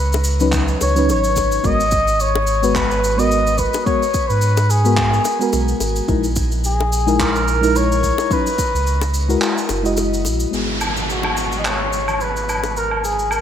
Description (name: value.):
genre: sunset chillout.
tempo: 108 BPM.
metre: 4/4.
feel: swing 56% on 16ths.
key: G# minor.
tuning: A4 = 440 Hz.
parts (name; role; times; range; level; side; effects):
mellow flugelhorn; melody; 0.0-13.4 s; F#4 to D#5; -20 LUFS; left 1 dB; vintage 12-bit sampler grit, ping-pong delay, shimmer reverb.
warm sub bass; bass; 0.0-13.4 s; F#1 to G#2; -20 LUFS; right 1 dB; tube saturation.
cabasa, handclaps and woodblock; drums; 0.1-13.4 s; none; -25 LUFS; right 1 dB; none.
bongos; percussion; 0.1-12.7 s; none; -29 LUFS; left 6 dB; none.
mellow FM electric piano; accompaniment; 0.4-13.4 s; F#3 to D#5; -22 LUFS; moving between left 6 dB and right 3 dB; chorus, auto-pan, ping-pong delay, shimmer reverb.
electronic kick drum; drums; 0.5-8.7 s; none; -24 LUFS; right 1 dB; none.
downlifter; sound effects; 10.5-13.4 s; none; -25 LUFS; right 1 dB; none.
room: moderate lush hall reverb, RT60 2.3 s.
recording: bright 1980s-style digital production.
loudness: -15 LUFS.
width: side -9 dB against mid.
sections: 0.0-10.5 A section; 10.5-13.4 B section.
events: kick drops out 9.4-10.5.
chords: 0.0 C#9sus4; 1.6 G#m9; 6.1 C#m69/A#; 8.3 C#9sus4; 9.4 F#9; 10.5 G#m7.